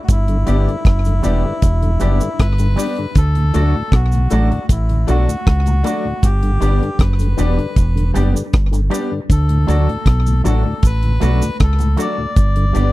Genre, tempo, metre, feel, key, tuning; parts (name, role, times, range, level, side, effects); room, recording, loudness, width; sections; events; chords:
roots reggae; 78 BPM; 4/4; straight; D major; A4 = 440 Hz
melodica; melody; 0.0-12.9 s; E4 to D5; -26 LUFS; left 2 dB; dub echo
deep dub fingered electric bass; bass; 0.1-12.9 s; E1 to D2; -15 LUFS; equal
deep reggae drum kit; drums; 0.1-12.9 s; hi-hat, kick drum, rim click; -15 LUFS; equal
cabasa; percussion; 0.1-12.9 s; -34 LUFS; right 6 dB
tonewheel organ; accompaniment; 0.3-12.8 s; D2 to D4; -24 LUFS; left 2 dB; slow rotary speaker, slapback echo
electric guitar with an envelope filter; accompaniment; 0.5-12.9 s; F#3 to G4; -26 LUFS; right 5 dB; dub echo
bright concert grand piano; stabs; 0.5-12.9 s; D4 to D5; -24 LUFS; left 6 dB; tube saturation
little or no reverb; dry, close 1970s-style studio recording; -13 LUFS; side -18 dB against mid
0.0-12.9 A section
0.1 G; 3.2 D; 6.2 G; 9.3 D; 12.4 G